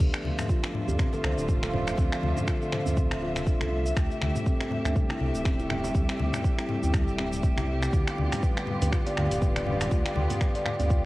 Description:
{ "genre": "afro house", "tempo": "121 BPM", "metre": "4/4", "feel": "swing 57% on 16ths", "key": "D dorian", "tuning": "A4 = 441 Hz", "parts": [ { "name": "muted studio string section", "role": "sustained chords", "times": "0.0-11.1 s", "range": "C3 to E5", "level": "-32 LUFS", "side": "equal", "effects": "sidechain pumping, cassette tape" }, { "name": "kalimba", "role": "arpeggios", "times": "0.0-11.0 s", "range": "G3 to F5", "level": "-33 LUFS", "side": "left 1 dB", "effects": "sidechain pumping, cassette tape, analog delay" }, { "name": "dark detuned saw bass", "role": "bass", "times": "0.0-11.1 s", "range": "D1 to D2", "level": "-30 LUFS", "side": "equal", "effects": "sidechain pumping" }, { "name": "afro-pop drum kit", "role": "drums", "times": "0.0-11.0 s", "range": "cabasa, crash cymbal, finger snaps, hi-hat, toms", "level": "-35 LUFS", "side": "equal", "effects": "cassette tape" }, { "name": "electronic kick drum", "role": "drums", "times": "0.0-11.0 s", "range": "none", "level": "-26 LUFS", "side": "equal", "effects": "cassette tape" }, { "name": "congas", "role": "percussion", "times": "0.0-10.8 s", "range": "none", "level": "-36 LUFS", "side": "left 4 dB", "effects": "none" }, { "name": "djembe", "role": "percussion", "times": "0.4-10.9 s", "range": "none", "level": "-39 LUFS", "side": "right 4 dB", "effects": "none" } ], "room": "small room ambience", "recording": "home recording on cassette", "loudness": "-24 LUFS", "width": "side -18 dB against mid", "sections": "0.0-11.1 A section", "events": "none", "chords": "0.0 Dmadd9; 4.0 Am7/D; 7.9 G7/D" }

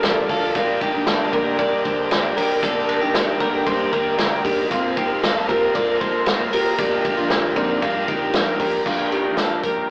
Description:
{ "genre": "jangly indie pop", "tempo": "116 BPM", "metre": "4/4", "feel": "straight", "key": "G minor", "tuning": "A4 = 440 Hz", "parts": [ { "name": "combo organ", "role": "accompaniment", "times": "0.0-9.9 s", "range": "F4 to D5", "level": "-25 LUFS", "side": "equal", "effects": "none" }, { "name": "fingerpicked steel-string acoustic guitar", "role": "accompaniment", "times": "0.0-9.9 s", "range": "G2 to Bb4", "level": "-26 LUFS", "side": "equal", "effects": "none" }, { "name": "twelve-string electric guitar", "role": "arpeggios", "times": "0.0-9.9 s", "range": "C4 to D5", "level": "-22 LUFS", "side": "equal", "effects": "spring reverb, digital delay" }, { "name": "vintage muted picked electric bass", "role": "bass", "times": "0.0-9.9 s", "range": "G1 to Bb2", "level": "-39 LUFS", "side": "equal", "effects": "none" }, { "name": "vintage drum kit", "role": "drums", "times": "0.0-9.8 s", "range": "crash cymbal, hi-hat, kick drum, ride cymbal, snare drum", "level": "-21 LUFS", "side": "equal", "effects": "none" } ], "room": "moderate studio reverb, RT60 0.6 s", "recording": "rough rehearsal-room recording, warm saturation, AM radio sound", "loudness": "-17 LUFS", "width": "side -35 dB against mid", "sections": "0.0-8.9 A section; 8.9-9.9 B section", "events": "none", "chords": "0.0 Dm; 0.6 Gm; 4.7 Bbsus2; 6.8 Gm7" }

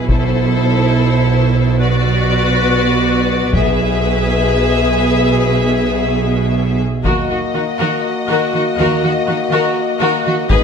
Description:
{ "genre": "cinematic, epic orchestral film score", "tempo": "243 BPM (eighths)", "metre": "7/8", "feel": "straight", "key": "Eb minor from 7.0 s", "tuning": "A4 = 438 Hz", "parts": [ { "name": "rich symphonic violin section", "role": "melody", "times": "0.0-10.6 s", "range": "C5 to E5", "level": "-21 LUFS", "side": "left 4 dB", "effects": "none" }, { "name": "rich symphonic violin section", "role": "second line", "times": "0.0-10.6 s", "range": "Eb4 to B4", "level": "-22 LUFS", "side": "left 6 dB", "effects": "none" }, { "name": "clear symphonic viola section", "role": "accompaniment", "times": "0.0-10.6 s", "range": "E4 to G#4", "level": "-20 LUFS", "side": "equal", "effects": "none" }, { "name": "rich symphonic cello section", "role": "bass", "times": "0.0-10.6 s", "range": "Ab2 to Eb3", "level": "-18 LUFS", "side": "right 3 dB", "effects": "none" }, { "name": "rich symphonic double bass section", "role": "bass", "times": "0.0-10.6 s", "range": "Ab1 to Eb2", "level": "-19 LUFS", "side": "right 3 dB", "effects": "none" }, { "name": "taiko ensemble", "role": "drums", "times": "0.1-10.6 s", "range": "none", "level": "-17 LUFS", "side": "left 1 dB", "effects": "none" }, { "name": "warm French horn section", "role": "sustained chords", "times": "7.0-10.6 s", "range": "Bb3 to Gb4", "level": "-20 LUFS", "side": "left 3 dB", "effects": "none" } ], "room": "moderate scoring stage reverb, RT60 1.5 s", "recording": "none", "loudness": "-12 LUFS", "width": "side -6 dB against mid", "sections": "0.0-7.0 A section; 7.0-10.6 B section", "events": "none", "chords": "0.1 Am/B; 1.8 Bm; 3.5 E/B; 7.0 Ebm" }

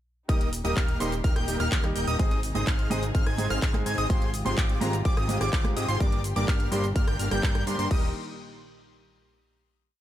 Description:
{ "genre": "EDM, festival progressive house", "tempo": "126 BPM", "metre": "4/4", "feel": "straight", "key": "Eb major", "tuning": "A4 = 442 Hz", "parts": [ { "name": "clear concert grand piano", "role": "accompaniment", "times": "0.3-8.1 s", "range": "G2 to Ab4", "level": "-33 LUFS", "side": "right 2 dB", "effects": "sidechain pumping, ping-pong delay" }, { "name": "muted chamber string section", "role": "sustained chords", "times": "0.3-8.1 s", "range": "Bb2 to Ab4", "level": "-39 LUFS", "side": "left 2 dB", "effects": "none" }, { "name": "plucky unison lead", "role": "arpeggios", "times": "0.3-8.1 s", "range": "Bb5 to Ab6", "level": "-33 LUFS", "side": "equal", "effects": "sidechain pumping, ping-pong delay" }, { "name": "big supersaw lead", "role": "riff", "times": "0.3-8.1 s", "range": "Bb3 to Ab5", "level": "-33 LUFS", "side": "equal", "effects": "sidechain pumping, ping-pong delay" }, { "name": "fat analog bass", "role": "bass", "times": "0.3-8.1 s", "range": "Eb1 to Ab2", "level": "-31 LUFS", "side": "equal", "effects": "sidechain pumping" }, { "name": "big-room dance drum kit", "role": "drums", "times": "0.3-8.0 s", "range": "crash cymbal, handclaps, hi-hat, rim click, shaker", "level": "-35 LUFS", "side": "equal", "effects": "studio reverb" }, { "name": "electronic kick drum", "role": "drums", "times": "0.3-8.0 s", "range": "none", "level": "-25 LUFS", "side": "equal", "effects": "studio reverb" } ], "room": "little or no reverb", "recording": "faint mains hum", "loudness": "-23 LUFS", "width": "side -12 dB against mid", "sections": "0.3-7.9 drop; 7.9-9.8 final chord", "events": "drop 0.3-7.9", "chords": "0.3 Eb; 2.2 Ab; 4.1 Fmadd9/Ab; 6.0 Gm; 7.9 Eb" }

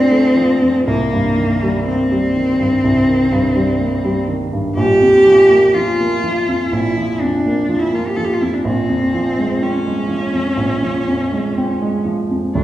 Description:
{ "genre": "classical, impressionist duo for cello and grand piano", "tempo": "62 BPM", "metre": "4/4", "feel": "rubato", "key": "unclear", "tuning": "A4 = 440 Hz", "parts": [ { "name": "rich cello", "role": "melody", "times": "0.0-12.6 s", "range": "Bb3 to A4", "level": "-15 LUFS", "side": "equal", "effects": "none" }, { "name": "dark grand piano", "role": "accompaniment", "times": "0.0-12.6 s", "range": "Bb1 to D4", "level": "-18 LUFS", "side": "right 1 dB", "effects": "none" } ], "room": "wet recital hall reverb, RT60 1.4 s", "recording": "heard from further back in the room", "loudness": "-13 LUFS", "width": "side -14 dB against mid", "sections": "0.0-12.6 A section", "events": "none", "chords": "0.0 Bbmaj7; 0.9 Cm7; 4.8 Bb5; 8.7 Dbmaj7/Bb" }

